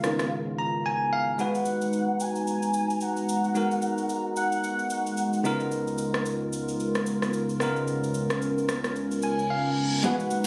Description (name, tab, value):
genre	amapiano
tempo	111 BPM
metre	4/4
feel	swing 58% on 16ths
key	unclear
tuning	A4 = 440 Hz
part	warm velvety synth lead	melody	0.0-5.4, 10.1-10.4 s	E#5 to G#5	-33 LUFS	equal	chorus, delay
part	bell-like tine electric piano	accompaniment	0.0-10.5 s	C#3 to A#5	-31 LUFS	equal	none
part	hollow soft pad	sustained chords	0.0-10.5 s	C#2 to A#5	-32 LUFS	equal	chorus, sidechain pumping
part	deep mellow chord stab	stabs	0.0-0.2, 10.0-10.5 s	B3 to A#4	-33 LUFS	equal	chorus, delay
part	deep house drum kit	drums	0.0-10.5 s	kick drum, rim click, shaker	-36 LUFS	equal	none
part	warm sub bass	bass	5.7-9.5 s	C#2	-44 LUFS	equal	none
part	reverse cymbal and impact	sound effects	9.3-10.5 s	none	-36 LUFS	equal	none
part	congas	percussion	10.3-10.5 s	none	-43 LUFS	equal	none
room	light reverb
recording	recorded on a phone in the room, studio reverb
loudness	-27 LUFS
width	mono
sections	0.0-1.4 A section; 1.4-10.0 B section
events	silent gap 0.3-1.4; tine electric piano fill 0.3-1.4, 9.0-10.0; reverse cymbal 9.3-10.0; impact 10.0-10.5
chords	0.0 C#13; 1.4 G#m7; 5.4 C#13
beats	0.31 0.85 | 1.39 1.93 2.47 3.01 | 3.55 4.09 4.63 5.17 | 5.71 6.25 6.79 7.33 | 7.88 8.42 8.96 9.50 | 10.04